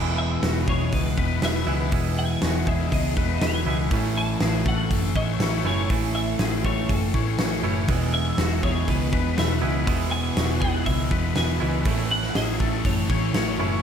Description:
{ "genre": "rock, shoegaze and dream pop", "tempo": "121 BPM", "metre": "4/4", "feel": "straight", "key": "E major", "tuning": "A4 = 442 Hz", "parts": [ { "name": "thick fuzz guitar", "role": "riff", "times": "0.0-13.8 s", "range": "E2 to A3", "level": "-28 LUFS", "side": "left 11 dB", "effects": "distortion, lush chorus" }, { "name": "twangy electric guitar", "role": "riff", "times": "0.0-13.8 s", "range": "A2 to E4", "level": "-30 LUFS", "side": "right 13 dB", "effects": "reverse reverb" }, { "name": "hollow-body short-scale picked electric bass", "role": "bass", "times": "0.0-13.8 s", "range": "E1 to C#2", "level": "-26 LUFS", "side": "equal", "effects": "none" }, { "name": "twelve-string electric guitar", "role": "melody", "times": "0.2-13.6 s", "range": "A4 to A5", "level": "-31 LUFS", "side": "equal", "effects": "ensemble chorus, slapback echo" }, { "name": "twangy electric guitar", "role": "arpeggios", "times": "0.4-13.8 s", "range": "F#4 to C#5", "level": "-34 LUFS", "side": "left 11 dB", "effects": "ensemble chorus, slapback echo" }, { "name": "big rock drum kit", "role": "drums", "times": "0.4-13.5 s", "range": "hi-hat, kick drum, snare drum", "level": "-26 LUFS", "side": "equal", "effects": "none" }, { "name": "sludgy distorted guitar", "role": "riff", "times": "7.9-13.8 s", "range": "E2 to A3", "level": "-32 LUFS", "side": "right 1 dB", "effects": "overdrive" } ], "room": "small room ambience", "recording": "none", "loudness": "-21 LUFS", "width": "side -8 dB against mid", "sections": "0.0-13.8 A section", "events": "none", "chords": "0.0 E; 3.9 A; 7.9 E; 11.9 A", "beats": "0.43 0.93 1.43 | 1.92 2.42 2.92 3.42 | 3.91 4.41 4.91 5.41 | 5.90 6.40 6.90 7.39 | 7.89 8.39 8.88 9.38 | 9.88 10.37 10.87 11.36 | 11.86 12.35 12.85 13.34" }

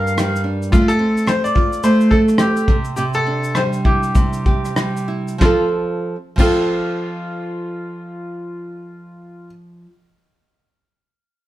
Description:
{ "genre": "acoustic pop", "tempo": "93-109 BPM", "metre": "4/4", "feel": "swing 60% on 16ths", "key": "F major", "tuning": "A4 = 438 Hz", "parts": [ { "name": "bright upright piano", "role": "melody", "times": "0.0-9.5 s", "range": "F4 to F5", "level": "-22 LUFS", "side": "left 2 dB", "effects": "none" }, { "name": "nylon-string guitar", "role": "accompaniment", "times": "0.0-9.9 s", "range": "G2 to Bb4", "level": "-19 LUFS", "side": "right 1 dB", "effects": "none" }, { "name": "soft brush drum kit", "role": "drums", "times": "0.1-6.6 s", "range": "crash cymbal, kick drum, rim click, shaker, snare drum", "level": "-18 LUFS", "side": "equal", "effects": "none" } ], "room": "wet large studio reverb, RT60 0.9 s", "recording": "band playing live in one room", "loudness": "-15 LUFS", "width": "side -15 dB against mid", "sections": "0.0-5.4 A section; 5.4-8.0 B section", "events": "slowing down 0.7-5.4", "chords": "0.0 Gm; 0.7 F/A; 2.7 Cadd9; 5.4 F", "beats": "0.18 | 0.73 1.28 1.83 2.40 | 2.97 3.56 4.16 4.78 | 5.41 6.06 6.71 7.36" }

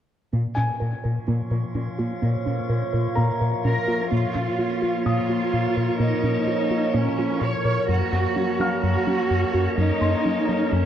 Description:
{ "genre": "cinematic", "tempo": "127 BPM", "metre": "4/4", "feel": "straight", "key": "Bb minor", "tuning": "A4 = 442 Hz", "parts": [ { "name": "metallic inharmonic drone", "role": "sustained chords", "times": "1.3-10.9 s", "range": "F3 to Db5", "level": "-26 LUFS", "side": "left 1 dB", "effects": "chorus, built-in reverb, phaser" }, { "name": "soft round pluck", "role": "arpeggios", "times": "0.3-10.9 s", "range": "Gb3 to Bb4", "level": "-31 LUFS", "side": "right 4 dB", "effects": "chorus, ping-pong delay" }, { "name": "round analog bass", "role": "riff", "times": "0.3-10.9 s", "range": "Gb2 to Bb3", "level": "-25 LUFS", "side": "left 1 dB", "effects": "none" }, { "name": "warm symphonic cello section", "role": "bass", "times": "0.3-10.9 s", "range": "Bb2 to Db5", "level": "-26 LUFS", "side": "right 2 dB", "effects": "none" }, { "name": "clear concert grand piano", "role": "texture", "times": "0.6-10.9 s", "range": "Bb4 to F6", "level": "-33 LUFS", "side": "left 2 dB", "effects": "ping-pong delay" } ], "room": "wet scoring stage reverb, RT60 1.9 s", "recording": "worn, warbling old tape, cassette tape, warbly pitch drift", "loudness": "-20 LUFS", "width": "side -10 dB against mid", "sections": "0.3-4.1 A section; 4.1-10.9 B section", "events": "none", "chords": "0.3 Bbm; 7.9 Gb", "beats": "| 0.33 0.81 1.28 1.75 | 2.22 2.69 3.17 3.64 | 4.11 4.58 5.06 5.53 | 6.00 6.47 6.95 7.42 | 7.89 8.37 8.84 9.31 | 9.78 10.25 10.73" }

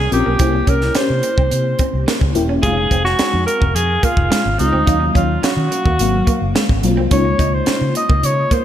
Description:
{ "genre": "polished 1980s jazz-funk pop", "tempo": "107 BPM", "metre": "4/4", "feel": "straight", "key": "unclear", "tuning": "A4 = 440 Hz", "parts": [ { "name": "warm alto saxophone", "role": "melody", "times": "0.0-8.6 s", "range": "Eb4 to Eb5", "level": "-19 LUFS", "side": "equal", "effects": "slapback echo, ping-pong delay" }, { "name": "FM electric piano with soft pad layer", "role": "accompaniment", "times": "0.0-8.6 s", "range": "Gb3 to F5", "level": "-21 LUFS", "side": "left 3 dB", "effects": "tremolo, ensemble chorus, slapback echo" }, { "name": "vintage muted fingered electric bass", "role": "bass", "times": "0.0-8.4 s", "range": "Eb1 to Eb3", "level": "-19 LUFS", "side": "equal", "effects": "none" }, { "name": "electric guitar at the edge of break-up", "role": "riff", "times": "0.1-8.6 s", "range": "Ab3 to F4", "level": "-24 LUFS", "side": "right 4 dB", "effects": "lush chorus" }, { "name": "crisp fusion drum kit", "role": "drums", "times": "0.1-8.6 s", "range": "hi-hat, kick drum, snare drum", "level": "-19 LUFS", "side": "equal", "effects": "none" } ], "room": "light reverb, studio reverb", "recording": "none", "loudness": "-13 LUFS", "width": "side -10 dB against mid", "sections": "0.0-8.6 A section", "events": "none", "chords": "0.4 C7b9; 2.6 Fm7; 4.9 Ebm7; 6.0 Ab13; 7.1 Db69", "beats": "| 0.40 0.96 1.52 2.08 | 2.64 3.20 3.76 4.32 | 4.88 5.43 5.99 6.55 | 7.11 7.67 8.23" }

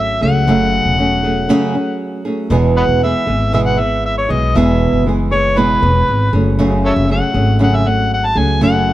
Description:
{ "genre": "pop", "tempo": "118 BPM", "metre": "4/4", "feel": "straight", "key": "E major", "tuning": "A4 = 441 Hz", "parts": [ { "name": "overdriven harmonica", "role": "melody", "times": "0.0-8.9 s", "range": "A4 to A5", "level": "-18 LUFS", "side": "left 1 dB", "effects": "none" }, { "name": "nylon-string guitar", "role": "accompaniment", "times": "0.0-8.9 s", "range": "E2 to G#4", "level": "-16 LUFS", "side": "right 2 dB", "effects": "none" }, { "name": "upright bass", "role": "bass", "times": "0.0-8.9 s", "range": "E1 to C#2", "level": "-17 LUFS", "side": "left 1 dB", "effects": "none" } ], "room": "light reverb", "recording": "dark, warm production", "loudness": "-12 LUFS", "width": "side -14 dB against mid", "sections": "0.0-2.5 A section; 2.5-8.9 A section", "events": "break 1.5-2.5", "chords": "0.0 F#madd9; 2.5 E; 6.3 F#madd9", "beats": "| 0.48 0.99 1.50 2.01 | 2.52 3.02 3.53 4.04 | 4.55 5.06 5.57 6.08 | 6.59 7.10 7.60 8.11 | 8.62" }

